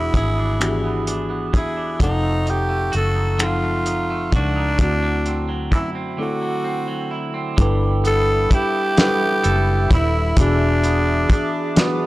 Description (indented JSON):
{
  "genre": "slow six-eight R&B",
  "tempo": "43 BPM (dotted quarters)",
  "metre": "6/8",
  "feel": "straight",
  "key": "G major",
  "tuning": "A4 = 440 Hz",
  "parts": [
    { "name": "growling tenor saxophone", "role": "melody", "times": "0.0-12.1 s", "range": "D4 to A4", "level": "-22 LUFS", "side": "equal", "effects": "none" },
    { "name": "twangy electric guitar", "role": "second line", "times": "0.0-12.1 s", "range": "D3 to A4", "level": "-28 LUFS", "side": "right 4 dB", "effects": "spring reverb, tape echo" },
    { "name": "mellow reed electric piano", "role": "accompaniment", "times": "0.0-12.1 s", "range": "D3 to Gb5", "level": "-25 LUFS", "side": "left 2 dB", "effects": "none" },
    { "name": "vintage muted fingered electric bass", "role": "bass", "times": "0.0-11.3 s", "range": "Eb1 to F#2", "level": "-21 LUFS", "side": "equal", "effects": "transformer saturation" },
    { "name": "cloth-damped thuddy drum kit", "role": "drums", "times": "0.1-12.0 s", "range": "finger snaps, hi-hat, kick drum, snare drum", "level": "-17 LUFS", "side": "equal", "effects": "vintage 12-bit sampler grit" },
    { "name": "hollow soft pad", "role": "sustained chords", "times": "7.6-12.1 s", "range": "G#4 to D6", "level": "-30 LUFS", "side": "right 2 dB", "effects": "chorus" }
  ],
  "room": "studio ambience",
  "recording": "dry, gritty hardware recording",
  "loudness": "-17 LUFS",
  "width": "side -18 dB against mid",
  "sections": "0.0-7.6 A section; 7.6-12.1 B section",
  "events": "break 6.2-7.6",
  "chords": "0.0 E7; 2.0 F7b9; 4.8 D9; 7.6 G69; 10.4 E7",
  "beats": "0.60 | 2.00 3.40 | 4.79 6.19 | 7.58 8.98 | 10.37 11.77"
}